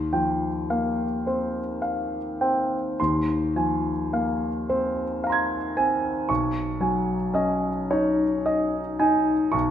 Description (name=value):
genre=classical, impressionist solo piano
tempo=51-57 BPM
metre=3/4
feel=rubato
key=unclear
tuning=A4 = 441 Hz
part: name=warm concert grand piano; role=solo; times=0.0-9.7 s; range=B1 to Ab6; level=-22 LUFS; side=equal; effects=none
room=wet recital hall reverb, RT60 1.7 s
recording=none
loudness=-22 LUFS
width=side -10 dB against mid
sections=0.0-9.7 A section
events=none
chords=0.0 Eb69; 3.0 Ab69/Eb; 6.3 B69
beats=0.70 1.82 | 2.98 4.12 5.24 | 6.30 7.36 8.46 | 9.54